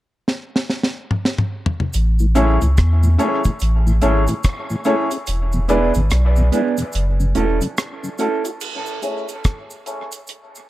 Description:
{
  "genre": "dub reggae",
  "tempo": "72 BPM",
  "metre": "4/4",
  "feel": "swing 62% on 16ths",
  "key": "A major",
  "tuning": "A4 = 440 Hz",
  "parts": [
    { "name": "deep reggae drum kit", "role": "drums", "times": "0.3-10.5 s", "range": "crash cymbal, hi-hat, kick drum, rim click, snare drum, toms", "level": "-21 LUFS", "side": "equal", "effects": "none" },
    { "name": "warm sub bass", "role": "bass", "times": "1.9-7.6 s", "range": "E1 to E2", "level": "-16 LUFS", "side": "equal", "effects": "none" },
    { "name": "cabasa", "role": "percussion", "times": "1.9-10.7 s", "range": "none", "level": "-36 LUFS", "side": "right 3 dB", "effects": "high-pass filter on perc" },
    { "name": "mellow tonewheel organ", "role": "accompaniment", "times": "2.2-8.5 s", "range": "E2 to G#4", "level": "-24 LUFS", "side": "left 1 dB", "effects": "chorus vibrato, slow rotary speaker, high-pass filter" },
    { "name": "mellow electric guitar", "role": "accompaniment", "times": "2.4-10.1 s", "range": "A3 to A4", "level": "-24 LUFS", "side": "right 5 dB", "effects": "high-pass filter, low-pass filter, dub echo" },
    { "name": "warm upright piano", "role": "stabs", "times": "2.4-10.1 s", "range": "E4 to D5", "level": "-24 LUFS", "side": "left 3 dB", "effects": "high-pass filter, low-pass filter, dub echo" }
  ],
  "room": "light reverb, studio reverb",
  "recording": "dark, warm production",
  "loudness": "-16 LUFS",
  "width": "side -15 dB against mid",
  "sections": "0.0-1.9 A section; 1.9-8.6 B section; 8.6-10.7 C section",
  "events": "drum fill 0.3-1.9; kick muted 5.3-8.6; filter sweep 5.3-10.7",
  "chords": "0.0 N.C.; 1.9 Amaj7; 5.3 E7; 6.9 F#m7; 8.6 Amaj7",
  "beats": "0.27 1.11 | 1.94 2.77 3.61 4.44 | 5.27 6.11 6.94 7.78 | 8.61 9.44 10.28"
}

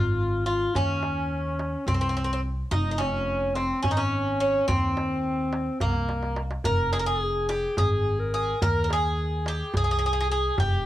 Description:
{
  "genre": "Turkish makam ensemble",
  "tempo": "214 BPM (eighths)",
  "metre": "7/8",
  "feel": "straight",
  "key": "F makam nihavent",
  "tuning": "A4 = 440 Hz",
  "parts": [
    { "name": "Greek bouzouki", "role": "melody", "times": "0.0-10.9 s", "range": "Bb3 to Bb4", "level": "-27 LUFS", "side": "right 1 dB", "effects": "cassette tape, plate reverb" },
    { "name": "mellow clarinet", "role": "second line", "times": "0.0-10.9 s", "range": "Bb3 to Bb4", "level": "-30 LUFS", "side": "left 2 dB", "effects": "cassette tape, plate reverb" },
    { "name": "upright bass", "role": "bass", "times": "0.0-10.9 s", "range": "F1 to Eb2", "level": "-29 LUFS", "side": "equal", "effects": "none" },
    { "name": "darbuka", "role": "percussion", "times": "0.5-10.7 s", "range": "none", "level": "-29 LUFS", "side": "right 1 dB", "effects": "none" }
  ],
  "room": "moderate studio reverb, RT60 0.5 s",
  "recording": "home recording on cassette",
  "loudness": "-23 LUFS",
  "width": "side -13 dB against mid",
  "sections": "0.0-10.9 A section",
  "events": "drum fill 6.1-6.6",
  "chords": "none",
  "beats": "0.19 0.47 | 0.75 1.03 1.31 1.59 1.87 2.15 2.44 | 2.72 3.00 3.28 3.56 3.84 4.12 4.40 | 4.68 4.96 5.24 5.52 5.80 6.09 6.37 | 6.65 6.93 7.21 7.49 7.77 8.05 8.33 | 8.61 8.89 9.18 9.46 9.74 10.02 10.30 | 10.58"
}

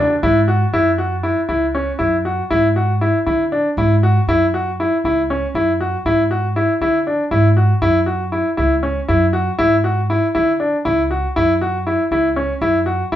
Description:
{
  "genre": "contemporary instrumental, contemporary",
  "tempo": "237 BPM (eighths)",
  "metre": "7/8",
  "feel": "straight",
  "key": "unclear",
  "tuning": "A4 = 439 Hz",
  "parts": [
    { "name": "bright concert grand piano", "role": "arpeggios", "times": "0.0-13.2 s", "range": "C#4 to F#4", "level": "-16 LUFS", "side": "left 1 dB", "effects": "none" },
    { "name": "upright bass", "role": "bass", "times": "0.0-13.2 s", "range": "C#2 to D3", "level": "-20 LUFS", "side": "right 1 dB", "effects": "none" }
  ],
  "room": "moderate studio ambience, RT60 0.4 s",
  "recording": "heard from further back in the room",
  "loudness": "-14 LUFS",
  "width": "side -11 dB against mid",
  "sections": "0.7-13.2 A section",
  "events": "none",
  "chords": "0.0 E9; 0.7 F#5; 2.5 E9/G#; 4.3 F#5; 6.0 E9/G#; 7.8 F#5; 9.6 C#madd11; 11.4 F#5",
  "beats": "0.22 0.48 | 0.73 0.98 1.24 1.49 1.74 2.00 2.25 | 2.50 2.76 3.01 3.26 3.52 3.77 4.02 | 4.28 4.53 4.78 5.04 5.29 5.54 5.79 | 6.05 6.30 6.55 6.81 7.06 7.31 7.57 | 7.82 8.07 8.32 8.58 8.83 9.08 9.34 | 9.59 9.84 10.09 10.34 10.60 10.85 11.10 | 11.35 11.61 11.86 12.11 12.36 12.62 12.87 | 13.12"
}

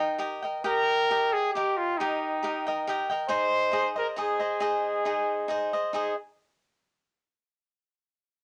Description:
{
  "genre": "mexican folk, mariachi",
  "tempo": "136 BPM",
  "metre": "3/4",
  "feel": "swing 53% on 8ths",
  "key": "Ab major",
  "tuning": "A4 = 439 Hz",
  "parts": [
    { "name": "mellow trumpet", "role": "melody", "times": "0.0-6.2 s", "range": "Eb4 to C5", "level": "-30 LUFS", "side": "equal", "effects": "cassette tape" },
    { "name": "cavaquinho", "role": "accompaniment", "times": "0.0-6.1 s", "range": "Eb4 to G5", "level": "-30 LUFS", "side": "equal", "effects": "none" }
  ],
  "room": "moderate small room ambience, RT60 0.5 s",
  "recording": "home recording on cassette",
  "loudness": "-27 LUFS",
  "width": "mono",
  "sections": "0.0-6.0 A section; 6.0-7.3 B section",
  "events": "none",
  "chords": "0.0 Eb; 3.3 Ab",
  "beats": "0.18 | 0.63 1.08 1.53 | 1.98 2.42 2.86 | 3.30 3.74 4.18 | 4.62 5.06 5.51 | 5.96"
}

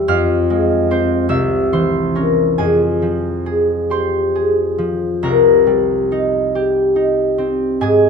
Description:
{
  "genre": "classical, solo harp piece",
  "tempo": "44-50 BPM (dotted quarters)",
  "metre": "6/8",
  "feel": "rubato",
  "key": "F minor",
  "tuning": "A4 = 441 Hz",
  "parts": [
    { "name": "concert harp", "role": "solo", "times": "0.0-8.1 s", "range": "C2 to G6", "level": "-13 LUFS", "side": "left 1 dB", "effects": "none" }
  ],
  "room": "light reverb",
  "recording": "dark, warm production",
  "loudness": "-14 LUFS",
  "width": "side -6 dB against mid",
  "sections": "0.0-5.2 A section; 5.2-8.1 B section",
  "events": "none",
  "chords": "0.1 Fm; 1.3 C7b9; 2.6 Fm; 5.2 Cm",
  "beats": "| 0.08 1.29 | 2.58 3.90 | 5.24 6.54 | 7.78"
}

